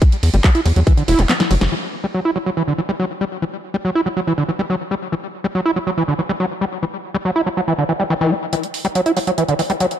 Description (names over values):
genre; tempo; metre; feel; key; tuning
psychedelic trance; 141 BPM; 4/4; straight; E minor; A4 = 440 Hz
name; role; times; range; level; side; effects
screaming distorted acid line; riff; 0.0-9.9 s; D3 to E4; -18 LUFS; moving between left 4 dB and right 3 dB; distortion, chorus, auto-pan, sidechain pumping, ping-pong delay
electronic kick drum; drums; 0.0-1.0 s; none; -12 LUFS; equal; none
techno drum kit; drums; 0.0-1.7, 8.5-10.0 s; handclaps, hi-hat, ride cymbal, snare drum; -23 LUFS; equal; none
tight sequencer bass; bass; 0.2-1.7 s; E1 to E2; -15 LUFS; equal; none
room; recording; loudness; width
light reverb; none; -16 LUFS; side -10 dB against mid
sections
0.0-1.7 A section; 1.7-8.5 B section; 8.5-10.0 C section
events
drop 0.0-1.7; kick drops out 1.3-1.7; drum fill 1.3-1.7; band accent 1.6; build-up 8.5-10.0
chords
0.0 E5